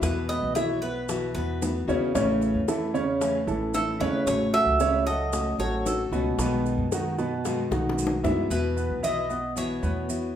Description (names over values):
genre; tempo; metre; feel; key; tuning
latin, Cuban son and guajira; 113 BPM; 4/4; straight; E major; A4 = 440 Hz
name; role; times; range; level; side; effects
Cuban tres; melody; 0.0-10.3 s; A4 to E5; -28 LUFS; right 2 dB; none
nylon-string guitar; accompaniment; 0.0-10.3 s; B2 to F#4; -30 LUFS; left 3 dB; none
clear baby grand piano; arpeggios; 0.0-10.3 s; B2 to E5; -28 LUFS; right 2 dB; none
upright bass; bass; 0.0-10.3 s; A1 to F#2; -31 LUFS; equal; none
bongos; percussion; 0.0-8.4 s; none; -33 LUFS; left 3 dB; none
maracas; percussion; 0.0-10.4 s; none; -40 LUFS; right 6 dB; none
room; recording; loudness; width
wet large studio reverb, RT60 0.8 s; band playing live in one room; -23 LUFS; side -10 dB against mid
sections
0.0-8.5 A section; 8.5-10.4 A section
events
drum fill 7.7-8.5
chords
0.0 Esus2; 2.2 A; 4.3 F#m/A; 6.4 B6; 8.5 Esus2